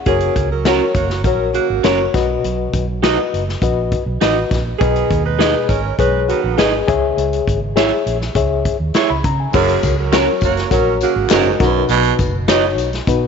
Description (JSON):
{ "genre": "uptempo 1960s-style soul", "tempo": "101 BPM", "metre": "4/4", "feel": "straight", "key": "unclear", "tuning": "A4 = 437 Hz", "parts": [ { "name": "reed electric piano", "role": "accompaniment", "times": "0.0-13.3 s", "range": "B2 to C#6", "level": "-18 LUFS", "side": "left 9 dB", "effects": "overdrive, fast tremolo" }, { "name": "warm saxophone section", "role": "second line", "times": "0.1-11.6 s", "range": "C#3 to C#5", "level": "-21 LUFS", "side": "right 13 dB", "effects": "none" }, { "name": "vintage muted fingered electric bass", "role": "bass", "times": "0.1-13.3 s", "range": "F#1 to C#3", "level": "-21 LUFS", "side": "right 2 dB", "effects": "none" }, { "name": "natural country drum kit", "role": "drums", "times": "0.1-13.2 s", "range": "crash cymbal, hi-hat, kick drum, snare drum", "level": "-20 LUFS", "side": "left 2 dB", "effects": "none" }, { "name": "electric guitar through a small old amp", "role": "stabs", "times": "0.7-12.6 s", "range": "C#4 to E5", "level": "-21 LUFS", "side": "right 13 dB", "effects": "none" }, { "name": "raspy baritone saxophone", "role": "riff", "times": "9.5-12.1 s", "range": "F#2 to B2", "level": "-19 LUFS", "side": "right 14 dB", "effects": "none" }, { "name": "tambourine and handclaps", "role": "percussion", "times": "9.5-13.2 s", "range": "none", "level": "-30 LUFS", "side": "left 10 dB", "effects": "none" } ], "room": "light reverb, small room ambience", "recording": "1960s-style stereo with parts hard left and right, nothing above 7.7 kHz", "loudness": "-14 LUFS", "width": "side -6 dB against mid", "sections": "0.0-9.5 A section; 9.5-13.3 A section", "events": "none", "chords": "0.1 F#; 2.1 B; 4.8 G#m; 6.9 C#m; 9.5 F#; 11.6 B", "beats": "| 0.07 0.66 1.25 1.85 | 2.44 3.03 3.62 4.21 | 4.81 5.40 5.99 6.58 | 7.17 7.77 8.36 8.95 | 9.54 10.13 10.72 11.31 | 11.90 12.49 13.08" }